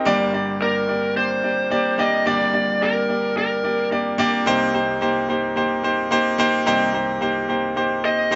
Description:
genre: pop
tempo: 109 BPM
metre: 4/4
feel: straight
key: unclear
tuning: A4 = 443 Hz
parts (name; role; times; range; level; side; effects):
- clear baby grand piano; accompaniment; 0.0-8.4 s; G1 to Eb5; -22 LUFS; equal; none
- lead guitar through a small cranked amp; melody; 0.6-3.9, 8.1-8.4 s; Bb4 to Eb5; -24 LUFS; equal; overdrive, digital delay
room: moderate small room reverb, RT60 0.5 s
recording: nothing above 7.6 kHz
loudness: -21 LUFS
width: mono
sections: 0.1-8.4 A section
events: grand piano fill 8.0-8.4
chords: 0.1 Gm; 4.5 Cm7

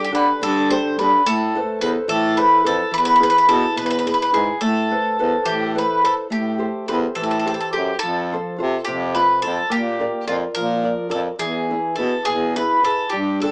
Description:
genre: italian folk, Italian serenade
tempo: 71 BPM (dotted quarters)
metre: 6/8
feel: straight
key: A minor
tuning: A4 = 440 Hz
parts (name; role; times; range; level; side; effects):
- bowl-back mandolin; melody; 0.0-13.5 s; F4 to C5; -18 LUFS; equal; none
- nylon-string guitar; accompaniment; 0.0-13.5 s; B2 to D5; -23 LUFS; equal; none
- clear baritone saxophone; bass; 0.1-13.5 s; E2 to D3; -23 LUFS; equal; none
room: moderate studio ambience, RT60 0.4 s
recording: band playing live in one room, small speaker sound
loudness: -16 LUFS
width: side -37 dB against mid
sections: 0.0-6.3 A section; 6.3-13.5 A section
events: none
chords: 0.0 Gsus2; 1.2 Amadd9; 2.9 E; 4.6 Amadd9; 6.3 Am7; 8.0 F; 9.7 Bb; 11.4 E

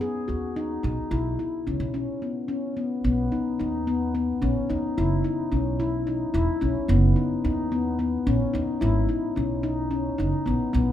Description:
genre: contemporary instrumental, chamber music in an uneven meter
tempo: 218 BPM (eighths)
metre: 7/8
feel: straight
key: B major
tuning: A4 = 440 Hz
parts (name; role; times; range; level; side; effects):
- handpan; arpeggios; 0.0-10.9 s; B3 to G#4; -25 LUFS; left 3 dB; none
- upright bass; bass; 0.3-10.9 s; E1 to D#2; -26 LUFS; right 2 dB; none
room: moderate recital hall reverb, RT60 1.3 s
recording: minimal, uncompressed stereo recording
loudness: -23 LUFS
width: side -11 dB against mid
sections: 0.0-3.0 A section; 3.0-10.9 B section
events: none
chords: 0.0 B (rootless); 1.1 Bsus2; 3.0 B; 5.0 F#7sus4; 6.9 B/F#; 8.8 G#m

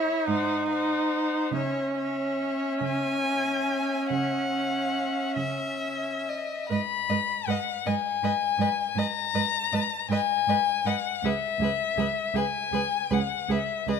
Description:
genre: classical, slow romantic movement for string quartet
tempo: 44-55 BPM (dotted quarters)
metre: 12/8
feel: rubato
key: C# minor, G# minor from 6.7 s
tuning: A4 = 436 Hz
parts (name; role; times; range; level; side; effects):
- rich violin; melody; 0.0-14.0 s; D#5 to B5; -28 LUFS; left 9 dB; none
- rich violin; second line; 0.0-14.0 s; B4 to G#5; -33 LUFS; left 1 dB; none
- rich viola; accompaniment; 0.0-14.0 s; C#4 to B4; -30 LUFS; right 1 dB; none
- rich cello; bass; 0.0-14.0 s; C#2 to C#3; -30 LUFS; right 5 dB; none
room: moderate scoring stage reverb, RT60 1.9 s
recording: close, detailed microphones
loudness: -24 LUFS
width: side -6 dB against mid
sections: 0.0-6.7 A section; 6.7-14.0 B section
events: none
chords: 0.3 G#7; 1.5 C#m; 6.7 G#m; 11.3 C#m7

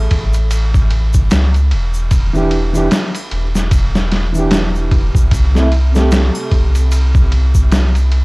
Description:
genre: trip hop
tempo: 75 BPM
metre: 4/4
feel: swing 58% on 16ths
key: unclear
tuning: A4 = 438 Hz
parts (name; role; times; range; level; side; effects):
- felt-muted upright piano; accompaniment; 0.0-8.2 s; C3 to E5; -20 LUFS; right 2 dB; tremolo, tape echo
- warm sub bass; bass; 0.0-8.2 s; E1 to C#2; -14 LUFS; equal; tube saturation
- trip hop sampler-style drum kit; drums; 0.1-8.2 s; kick drum, ride cymbal, snare drum; -15 LUFS; equal; none
- tube shaker and triangle; percussion; 0.3-8.1 s; none; -34 LUFS; left 2 dB; none
room: little or no reverb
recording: dry, gritty hardware recording, cassette tape, faint mains hum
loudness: -11 LUFS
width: side -26 dB against mid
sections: 0.0-8.2 A section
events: none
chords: 0.0 Amaj7; 2.1 Em7; 5.3 C5

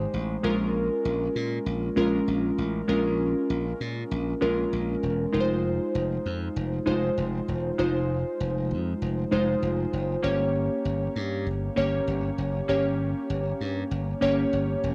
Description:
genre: 1980s-style pop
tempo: 98 BPM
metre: 4/4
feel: straight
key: F minor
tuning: A4 = 440 Hz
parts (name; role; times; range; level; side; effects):
- glassy digital keys; accompaniment; 0.0-14.9 s; Ab3 to Db5; -28 LUFS; equal; chorus, cassette tape, plate reverb
- glassy slap bass; bass; 0.0-14.9 s; E1 to Bb2; -32 LUFS; equal; none
room: moderate studio reverb, RT60 0.6 s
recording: home recording on cassette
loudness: -27 LUFS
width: mono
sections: 0.0-14.9 A section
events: none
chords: 0.4 Bbm7; 5.3 Fm7; 10.2 Gdim

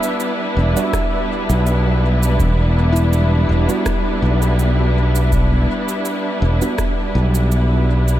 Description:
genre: ambient dub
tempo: 82 BPM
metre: 4/4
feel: swing 54% on 16ths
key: E minor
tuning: A4 = 439 Hz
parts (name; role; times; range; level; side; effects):
- muted studio string section; sustained chords; 0.0-8.2 s; G3 to B4; -20 LUFS; equal; none
- handpan; arpeggios; 0.0-5.8 s; E4 to E5; -29 LUFS; left 1 dB; dub echo
- electronic cabasa and rim click; drums; 0.0-8.2 s; none; -31 LUFS; right 3 dB; dub echo
- modern bright fingered electric bass; bass; 0.6-8.2 s; E1 to B1; -15 LUFS; equal; none
- filtered dub chord stab; stabs; 0.8-6.8 s; G3 to F#4; -29 LUFS; right 3 dB; none
- electronic kick drum; drums; 0.9-6.9 s; none; -22 LUFS; equal; none
room: moderate huge ambient reverb, RT60 7.6 s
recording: dreamy mix soaked in reverb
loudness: -14 LUFS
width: side -13 dB against mid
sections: 0.0-8.2 A section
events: none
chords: 0.0 Em7

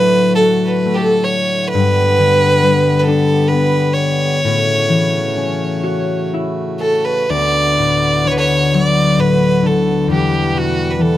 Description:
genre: celtic folk, Celtic slow air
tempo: 61-68 BPM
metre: 3/4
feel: rubato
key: D major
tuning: A4 = 440 Hz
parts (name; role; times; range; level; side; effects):
- rich fiddle; melody; 0.0-11.2 s; F#4 to D5; -15 LUFS; right 1 dB; none
- concert harp; accompaniment; 0.0-11.2 s; D2 to A5; -16 LUFS; left 3 dB; none
- pedal harmonium; sustained chords; 0.0-11.2 s; A2 to F#5; -24 LUFS; right 2 dB; none
room: little or no reverb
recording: close, detailed microphones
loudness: -12 LUFS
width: side -13 dB against mid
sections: 0.0-7.3 A section; 7.3-11.2 B section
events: harp fill 5.4-7.3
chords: 0.0 D/A; 1.7 G; 4.4 A6; 7.3 D6; 10.1 Emadd9

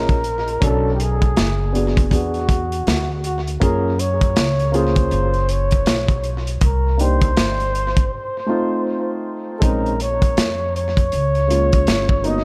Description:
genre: hip hop, jazz-hop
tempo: 80 BPM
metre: 4/4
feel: swing 62% on 16ths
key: Bb minor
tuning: A4 = 440 Hz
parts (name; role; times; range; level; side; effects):
- breathy flugelhorn; melody; 0.0-12.4 s; F#4 to Eb5; -25 LUFS; equal; tape echo
- dark baby grand piano; accompaniment; 0.0-12.4 s; Gb3 to Eb5; -26 LUFS; equal; tape echo
- upright bass; bass; 0.0-12.4 s; F#1 to Gb2; -24 LUFS; equal; none
- crunchy breakbeat drum kit; drums; 0.1-12.4 s; hi-hat, kick drum, snare drum; -22 LUFS; equal; tape echo
room: light reverb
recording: echo-heavy mix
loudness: -19 LUFS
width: mono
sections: 0.0-12.4 A section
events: break 8.1-9.6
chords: 0.0 Bbm7; 0.6 Bm7; 2.1 E9; 3.6 Gbmaj7; 6.6 Cm7; 8.1 F7; 9.6 Bbm11

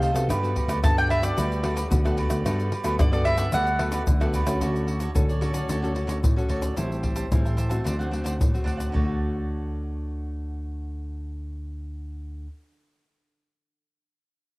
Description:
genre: samba and choro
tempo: 111 BPM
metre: 4/4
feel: straight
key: G major, D major from 4.6 s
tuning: A4 = 442 Hz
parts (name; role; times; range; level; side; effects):
- cavaquinho; accompaniment; 0.0-12.5 s; D4 to A5; -33 LUFS; right 3 dB; none
- nylon-string guitar; accompaniment; 0.0-12.6 s; A2 to A4; -31 LUFS; left 1 dB; none
- tine electric piano; bass; 0.0-12.5 s; A1 to D3; -28 LUFS; equal; none
- pandeiro, tube shaker, tamborim and surdo; percussion; 0.0-9.1 s; none; -25 LUFS; equal; none
- mandolin; melody; 0.8-4.3 s; D5 to A5; -27 LUFS; right 1 dB; cassette tape
room: moderate spring reverb, RT60 2.6 s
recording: home recording on cassette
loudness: -22 LUFS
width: side -22 dB against mid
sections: 0.0-4.6 A section; 4.6-8.9 B section; 8.9-13.3 C section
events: none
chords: 0.3 Gmaj9; 4.6 Dmaj7; 6.8 Am7; 7.9 D7; 8.9 Dmaj7

